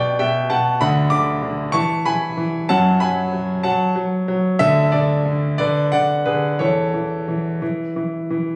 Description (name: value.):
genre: classical-period piano sonatina.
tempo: 62 BPM (dotted quarters).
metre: 6/8.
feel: uneven beats, rubato.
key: A major.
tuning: A4 = 440 Hz.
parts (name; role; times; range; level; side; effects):
bright concert grand piano; solo; 0.0-8.6 s; D2 to D6; -19 LUFS; equal; none.
room: moderate recital hall reverb, RT60 1.5 s.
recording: recorded on a phone in the room, club reverb, compression.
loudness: -19 LUFS.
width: mono.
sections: 0.0-8.6 A section.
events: none.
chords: 0.0 G/B; 0.8 Bm/D; 1.7 E; 2.7 F#madd9; 4.6 D5; 5.6 Bm/D; 6.6 A/E; 7.6 N.C..